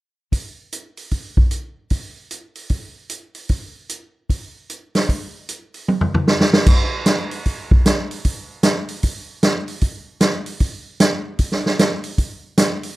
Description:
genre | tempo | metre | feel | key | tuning
jazz | 152 BPM | 4/4 | swing 64% on 8ths | none | none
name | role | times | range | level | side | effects
vintage drum kit | drums | 0.3-12.9 s | crash cymbal, hi-hat, kick drum, snare drum, toms | -17 LUFS | equal | none
room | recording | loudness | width
light reverb | dark, warm production | -18 LUFS | side -18 dB against mid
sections
0.3-6.7 A section; 6.7-13.0 B section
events
drum fill 5.9-6.7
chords
none

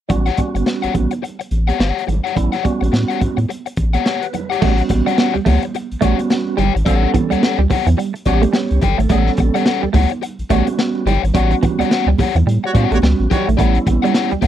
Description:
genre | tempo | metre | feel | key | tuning
funk | 107 BPM | 4/4 | swing 60% on 16ths | A mixolydian | A4 = 441 Hz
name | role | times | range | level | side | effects
crunchy overdriven guitar | accompaniment | 0.1-14.5 s | G4 to G5 | -21 LUFS | left 13 dB | none
percussive tonewheel organ | stabs | 0.1-14.3 s | G3 to C#5 | -21 LUFS | right 5 dB | fast rotary speaker
saturated sub bass | bass | 0.1-14.5 s | G1 to A2 | -16 LUFS | equal | none
crunchy breakbeat drum kit | drums | 0.1-14.5 s | crash cymbal, hi-hat, kick drum, snare drum | -20 LUFS | equal | none
congas | percussion | 0.1-14.5 s | none | -25 LUFS | right 6 dB | none
clean electric guitar | riff | 4.6-14.5 s | E3 to A3 | -20 LUFS | right 8 dB | phaser
warm horn section | second line | 12.6-13.5 s | G3 to C#5 | -21 LUFS | right 3 dB | none
room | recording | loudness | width
little or no reverb | dry, close 1970s-style studio recording | -14 LUFS | side -11 dB against mid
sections
0.1-4.6 A section; 4.6-14.5 B section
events
tonewheel organ fill 8.3-9.1; band accent 11.3-13.6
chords
0.1 A13

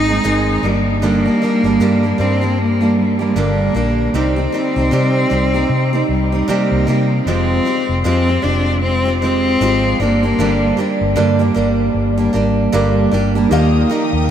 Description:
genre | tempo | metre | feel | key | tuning
acoustic pop | 77 BPM | 4/4 | swing 60% on 16ths | unclear | A4 = 440 Hz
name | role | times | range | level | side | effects
clear cello | melody | 0.0-11.2 s | G3 to Eb4 | -19 LUFS | left 2 dB | none
picked steel-string acoustic guitar | accompaniment | 0.0-14.3 s | G2 to Ab4 | -16 LUFS | right 2 dB | none
vintage muted fingered electric bass | bass | 0.0-14.3 s | F1 to C3 | -19 LUFS | left 1 dB | none
felt-muted upright piano | accompaniment | 13.5-14.3 s | Eb4 to F5 | -22 LUFS | left 7 dB | none
warm studio string section | sustained chords | 13.5-14.3 s | Bb4 to Eb6 | -25 LUFS | left 2 dB | none
room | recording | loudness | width
wet huge ambient reverb, RT60 7.8 s | in a vast, echoing space | -13 LUFS | side -9 dB against mid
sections
0.0-7.3 A section; 7.3-14.3 B section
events
none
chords
0.0 Ab; 0.6 Gm; 4.1 Cm; 7.3 Fmadd9; 10.0 Gm; 13.5 Ebadd9

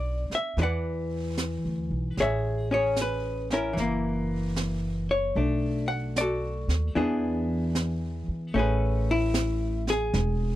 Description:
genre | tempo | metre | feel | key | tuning
jazz ballad | 75 BPM | 4/4 | swing 66% on 8ths | A major | A4 = 441 Hz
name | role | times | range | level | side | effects
archtop guitar, miked and amplified | accompaniment | 0.0-10.6 s | E3 to F#5 | -27 LUFS | left 1 dB | none
upright bass | bass | 0.0-10.6 s | E1 to E2 | -29 LUFS | right 1 dB | none
jazz brush drum kit | drums | 0.3-10.6 s | brushed snare drum, hi-hat, snare drum | -33 LUFS | right 3 dB | none
room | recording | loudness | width
little or no reverb | dry, close 1970s-style studio recording | -25 LUFS | side -14 dB against mid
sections
0.0-8.5 A section; 8.5-10.6 B section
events
none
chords
0.0 Bm7; 0.6 E7sus2; 2.2 Amaj7; 3.8 F#7; 5.3 Bm7; 6.9 E7; 8.5 Amaj9

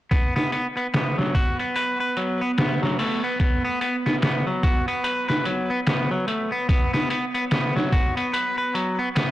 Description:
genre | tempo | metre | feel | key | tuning
trip hop | 73 BPM | 4/4 | swing 60% on 16ths | unclear | A4 = 442 Hz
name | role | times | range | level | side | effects
clean electric guitar | arpeggios | 0.1-9.3 s | F#3 to B4 | -24 LUFS | equal | low-pass filter, tape echo
trip hop sampler-style drum kit | drums | 0.1-9.3 s | hi-hat, kick drum, snare drum | -23 LUFS | equal | overdrive, low-pass filter on kick, low-pass filter on hats, low-pass filter on snare, low-pass filter on room
bowed-like drone | texture | 0.7-9.3 s | B3 | -32 LUFS | right 1 dB | built-in reverb
room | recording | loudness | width
moderate lush hall reverb, RT60 2.4 s | blown-out, overdriven recording, vinyl crackle, overdrive | -21 LUFS | side -14 dB against mid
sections
0.1-9.3 A section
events
none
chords
0.1 F#sus4

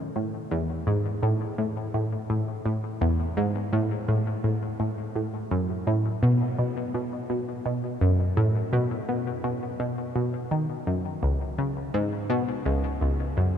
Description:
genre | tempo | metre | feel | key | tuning
ambient | 84 BPM | 4/4 | straight | unclear | A4 = 440 Hz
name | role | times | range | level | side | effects
analog pluck | solo | 0.2-13.6 s | C#2 to D#3 | -24 LUFS | equal | chorus, phaser, ping-pong delay
room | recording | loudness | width
wet huge ambient reverb, RT60 7.8 s | none | -24 LUFS | side -8 dB against mid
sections
0.0-13.6 A section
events
none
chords
none

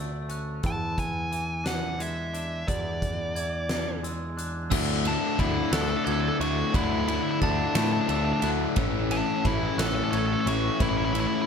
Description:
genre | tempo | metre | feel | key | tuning
post-rock | 59 BPM (dotted quarters) | 6/8 | straight | D lydian | A4 = 439 Hz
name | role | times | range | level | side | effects
glockenspiel with hard plastic mallets | arpeggios | 0.0-10.8 s | E6 to A6 | -40 LUFS | right 4 dB | digital delay
twangy electric guitar | arpeggios | 0.0-11.5 s | E2 to D4 | -38 LUFS | equal | digital delay
growling picked electric bass | bass | 0.0-11.3 s | A1 to A2 | -31 LUFS | equal | overdrive
huge arena drum kit | drums | 0.3-11.3 s | crash cymbal, hi-hat, kick drum, ride cymbal, snare drum | -30 LUFS | right 1 dB | none
nasal lead guitar with a parked wah | melody | 0.7-11.5 s | D4 to A5 | -31 LUFS | right 1 dB | overdrive, digital delay
overdriven electric guitar | riff | 4.7-11.5 s | A2 to E4 | -28 LUFS | left 12 dB | none
sludgy distorted guitar | riff | 4.7-11.5 s | A2 to E4 | -32 LUFS | right 13 dB | overdrive
room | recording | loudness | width
light reverb, small room ambience | none | -24 LUFS | side -6 dB against mid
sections
0.0-4.7 A section; 4.7-11.5 B section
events
none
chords
0.0 Dmaj7; 0.6 E7; 4.7 Dsus2; 8.8 A

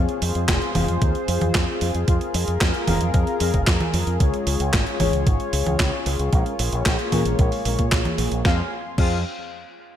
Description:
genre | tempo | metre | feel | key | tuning
italo disco | 113 BPM | 4/4 | straight | F minor | A4 = 439 Hz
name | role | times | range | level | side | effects
warm analog pad | sustained chords | 0.0-8.7 s | Bb3 to C6 | -27 LUFS | left 2 dB | chorus
analog synth brass | stabs | 0.0-9.2 s | Ab3 to F5 | -30 LUFS | left 4 dB | chorus, ping-pong delay
fingered electric bass with an envelope filter | bass | 0.0-9.2 s | F1 to Bb2 | -24 LUFS | equal | none
clean 12-bit digital drum machine | drums | 0.1-9.1 s | congas, crash cymbal, handclaps, hi-hat, snare drum | -25 LUFS | right 2 dB | gated reverb
electronic kick drum | drums | 0.5-9.1 s | none | -20 LUFS | equal | none
room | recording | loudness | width
light reverb, digital ambience | none | -19 LUFS | side -10 dB against mid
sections
0.0-8.4 A section; 8.4-10.0 B section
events
filter sweep on analog polysynth 0.0-8.4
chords
0.0 Fm; 4.2 Db; 6.3 Bbm7; 8.4 Fm

